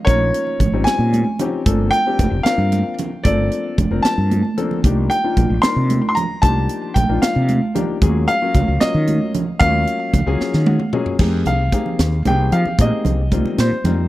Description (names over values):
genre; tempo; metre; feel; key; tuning
electric jazz fusion; 76 BPM (dotted quarters); 6/8; straight; F minor; A4 = 438 Hz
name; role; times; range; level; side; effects
clear baby grand piano; melody; 0.0-14.1 s; C5 to C6; -21 LUFS; equal; tape echo
warm grand piano; accompaniment; 0.1-14.1 s; F3 to Gb5; -23 LUFS; left 5 dB; none
mellow fretless electric bass; bass; 0.1-14.1 s; F1 to F3; -18 LUFS; equal; none
tight funk drum kit; drums; 0.1-14.0 s; crash cymbal, hi-hat, kick drum, snare drum, toms; -19 LUFS; equal; none
congas; percussion; 0.1-14.0 s; none; -23 LUFS; right 4 dB; none
room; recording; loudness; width
small room ambience; dry, close 1970s-style studio recording; -15 LUFS; side -16 dB against mid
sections
0.0-11.2 A section; 11.2-14.1 B section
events
drum fill 4.4-4.8, 10.4-11.2; grand piano fill 10.4-11.2; grand piano solo 11.2-14.1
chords
0.0 Bbm11; 1.7 Gm11; 4.8 Cm11; 8.0 Ebm11; 11.2 Fm11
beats
| 0.07 0.86 | 1.66 2.46 | 3.25 4.04 | 4.84 5.63 | 6.43 7.22 | 8.02 8.81 | 9.61 10.40 | 11.20 11.99 | 12.79 13.58